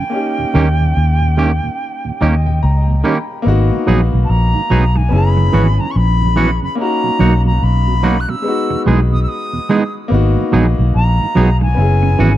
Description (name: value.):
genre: reggae.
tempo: 72 BPM.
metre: 4/4.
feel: swing 61% on 16ths.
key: G# minor.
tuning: A4 = 439 Hz.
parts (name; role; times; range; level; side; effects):
silver concert flute; melody; 0.0-12.4 s; G5 to F#6; -22 LUFS; equal; tape echo.
bright grand piano; accompaniment; 0.0-12.4 s; G#3 to B5; -21 LUFS; left 3 dB; tape echo.
mellow tonewheel organ; accompaniment; 0.0-12.3 s; D#2 to F#4; -24 LUFS; right 6 dB; chorus vibrato, slow rotary speaker.
twangy electric guitar; stabs; 0.5-12.3 s; D#3 to G#4; -17 LUFS; right 3 dB; vibrato effect.
vintage muted fingered electric bass; bass; 0.6-12.4 s; F#1 to D#2; -13 LUFS; equal; none.
room: small room reverb.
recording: dry, close 1970s-style studio recording.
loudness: -12 LUFS.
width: side -13 dB against mid.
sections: 0.0-3.5 A section; 3.5-12.4 B section.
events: grand piano fill 1.8-3.5.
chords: 0.1 D#7; 3.5 G#m7; 5.1 F#7sus4; 6.8 Bmaj7; 8.4 Emaj7; 10.1 G#m7; 11.8 F#7sus4.